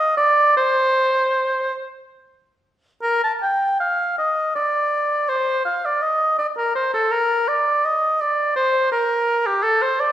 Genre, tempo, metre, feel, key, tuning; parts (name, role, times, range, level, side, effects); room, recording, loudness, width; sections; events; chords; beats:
classical, baroque-style fantasia for unaccompanied oboe; 45-56 BPM (dotted quarters); 6/8; rubato; A4 = 441 Hz
warm oboe; solo; 0.0-10.1 s; G4 to A5; -17 LUFS; equal
wet recital hall reverb, RT60 1.3 s; heard from further back in the room; -17 LUFS; side -12 dB against mid
0.0-3.0 A section; 3.0-10.1 A section
| 0.57 1.75 | 3.02 4.19 | 5.29 6.39 | 7.48 8.56 | 9.63